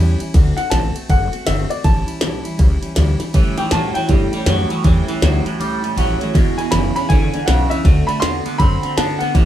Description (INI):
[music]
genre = rockabilly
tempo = 160 BPM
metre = 4/4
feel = swing 62% on 8ths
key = A mixolydian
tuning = A4 = 438 Hz
[part]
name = picked steel-string acoustic guitar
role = accompaniment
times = 0.0-9.5 s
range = E2 to F#4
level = -24 LUFS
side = left 1 dB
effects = none
[part]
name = upright bass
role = bass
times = 0.0-9.5 s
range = E1 to A2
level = -18 LUFS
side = equal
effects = none
[part]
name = glitchy drum kit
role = drums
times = 0.2-9.5 s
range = kick drum, ride cymbal, snare drum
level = -17 LUFS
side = equal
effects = none
[part]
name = warm upright piano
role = melody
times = 0.6-9.3 s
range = D5 to C6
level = -23 LUFS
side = left 1 dB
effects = none
[part]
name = twangy electric guitar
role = riff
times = 3.3-9.5 s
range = E2 to C4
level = -21 LUFS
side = right 3 dB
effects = phaser
[sound]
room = moderate studio reverb, RT60 0.6 s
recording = band playing live in one room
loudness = -14 LUFS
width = side -12 dB against mid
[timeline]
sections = 0.0-9.5 A section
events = break 0.0-0.3, 5.6-6.3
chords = 0.3 D7; 1.8 A7; 6.3 E7; 7.8 D7